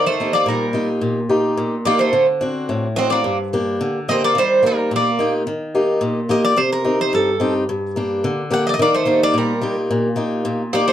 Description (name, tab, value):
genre	greek folk, Greek bouzouki band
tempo	108 BPM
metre	2/4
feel	straight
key	unclear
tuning	A4 = 441 Hz
part	Greek bouzouki	melody	0.0-10.9 s	A4 to F#5	-18 LUFS	equal	none
part	Greek bouzouki	second line	0.0-5.3, 8.8-10.9 s	G3 to C4	-23 LUFS	right 4 dB	none
part	picked swing-style acoustic guitar	accompaniment	0.0-10.9 s	G2 to G4	-19 LUFS	left 1 dB	none
room	moderate studio reverb, RT60 0.5 s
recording	dark, warm production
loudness	-16 LUFS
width	side -11 dB against mid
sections	0.0-5.5 A section; 5.5-10.9 A section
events	none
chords	0.0 Eb; 2.1 D7; 3.3 Gm; 4.4 Eb; 6.6 Cm; 7.7 Gm; 8.8 Eb